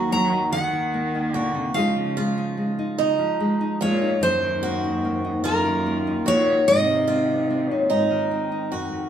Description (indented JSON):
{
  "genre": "acoustic folk duo or small band",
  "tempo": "49 BPM (dotted quarters)",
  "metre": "6/8",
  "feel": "straight",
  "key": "Eb dorian",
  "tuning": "A4 = 439 Hz",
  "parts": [
    { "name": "picked steel-string acoustic guitar", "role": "melody", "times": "0.0-8.3 s", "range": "Bb4 to Bb5", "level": "-22 LUFS", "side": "left 1 dB", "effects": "none" },
    { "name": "warm cello", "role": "second line", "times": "0.0-8.3 s", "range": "Gb2 to Gb3", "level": "-29 LUFS", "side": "right 3 dB", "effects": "none" },
    { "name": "nylon-string guitar", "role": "accompaniment", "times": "0.0-9.1 s", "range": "Eb2 to Gb4", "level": "-24 LUFS", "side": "left 1 dB", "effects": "none" },
    { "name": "picked swing-style acoustic guitar", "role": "arpeggios", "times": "0.0-9.1 s", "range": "Eb4 to Gb4", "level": "-27 LUFS", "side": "right 4 dB", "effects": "none" }
  ],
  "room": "wet studio reverb, RT60 0.9 s",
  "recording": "heard from further back in the room",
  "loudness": "-20 LUFS",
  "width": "side -9 dB against mid",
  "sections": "0.0-9.1 A section",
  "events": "none",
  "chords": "0.0 Ebm; 1.8 Dbadd9; 4.2 Ebm; 6.7 Ab"
}